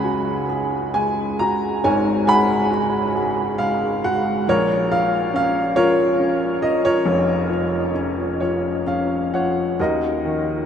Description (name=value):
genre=classical, lyrical solo piano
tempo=68 BPM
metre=3/4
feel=rubato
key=unclear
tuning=A4 = 440 Hz
part: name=clear upright piano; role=solo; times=0.0-10.7 s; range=F1 to Cb6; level=-18 LUFS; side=equal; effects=none
room=wet huge ambient reverb, RT60 7.6 s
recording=in a vast, echoing space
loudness=-18 LUFS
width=side -8 dB against mid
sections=0.0-9.8 A section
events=upright piano fill 7.9-9.8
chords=0.0 Dbsus4; 4.5 Bbm; 9.8 Ebm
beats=0.04 0.94 | 1.84 2.71 3.59 | 4.47 5.33 6.19 | 7.05 7.93 8.86 | 9.79